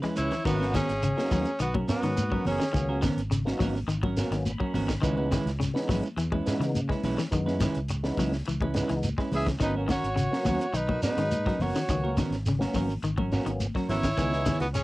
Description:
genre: afrobeat.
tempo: 105 BPM.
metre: 4/4.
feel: straight.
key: G# minor.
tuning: A4 = 438 Hz.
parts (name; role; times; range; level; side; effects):
clean electric guitar; arpeggios; 0.0-14.8 s; C#3 to G#3; -32 LUFS; left 3 dB; warbly pitch drift, cassette tape.
semi-hollow electric guitar; stabs; 0.0-14.7 s; G#3 to B4; -32 LUFS; right 3 dB; cassette tape.
fingered electric bass; bass; 0.0-14.8 s; F#1 to C#3; -31 LUFS; equal; none.
tight funk drum kit; drums; 0.0-14.8 s; crash cymbal, hi-hat, kick drum, snare drum; -33 LUFS; equal; cassette tape.
congas; percussion; 0.0-14.6 s; none; -35 LUFS; left 3 dB; none.
shekere; percussion; 0.0-14.8 s; none; -34 LUFS; right 1 dB; none.
breathy tenor saxophone; melody; 0.2-3.0, 9.4-14.8 s; B3 to G#4; -31 LUFS; equal; cassette tape.
bright trumpet; second line; 0.2-3.0, 9.3-14.8 s; F#4 to E5; -35 LUFS; right 1 dB; cassette tape.
tonewheel organ; accompaniment; 0.5-14.5 s; E3 to B5; -34 LUFS; left 1 dB; overdrive, fast rotary speaker, cassette tape.
room: light reverb.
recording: home recording on cassette.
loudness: -25 LUFS.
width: side -18 dB against mid.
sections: 0.5-14.8 A section.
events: drum fill 0.0-0.5; tonewheel organ fill 4.2-5.0.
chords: 0.5 G#m11; 5.0 C#m7; 9.6 G#m11; 14.2 C#m7.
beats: | 0.46 1.03 1.60 2.17 | 2.75 3.32 3.89 4.46 | 5.03 5.60 6.17 6.75 | 7.32 7.89 8.46 9.03 | 9.61 10.18 10.75 11.32 | 11.89 12.47 13.04 13.61 | 14.18 14.76.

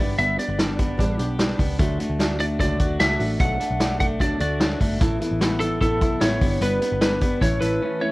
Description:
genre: jangly indie pop.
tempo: 149 BPM.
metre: 4/4.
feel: straight.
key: unclear.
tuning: A4 = 441 Hz.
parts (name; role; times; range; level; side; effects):
lightly driven lead guitar; melody; 0.0-8.1 s; A4 to F#5; -25 LUFS; equal; none.
fingerpicked steel-string acoustic guitar; accompaniment; 0.0-8.1 s; A2 to A4; -28 LUFS; right 2 dB; none.
clean electric guitar; arpeggios; 0.0-8.1 s; E3 to A4; -28 LUFS; left 3 dB; none.
vintage muted picked electric bass; bass; 0.0-7.8 s; G1 to D2; -27 LUFS; equal; none.
vintage drum kit; drums; 0.2-7.7 s; hi-hat, kick drum, snare drum; -23 LUFS; equal; none.
room: light reverb, small room ambience.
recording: worn, warbling old tape, cassette tape, warbly pitch drift.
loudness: -19 LUFS.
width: side -20 dB against mid.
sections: 0.0-8.1 A section.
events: break 7.8-8.1.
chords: 0.0 G; 1.8 D; 3.4 Bm7; 5.0 Asus2; 6.4 G; 7.4 A.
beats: | 0.19 0.59 0.99 1.39 | 1.79 2.20 2.60 3.00 | 3.40 3.80 4.21 4.61 | 5.01 5.41 5.81 6.21 | 6.61 7.01 7.42 7.82.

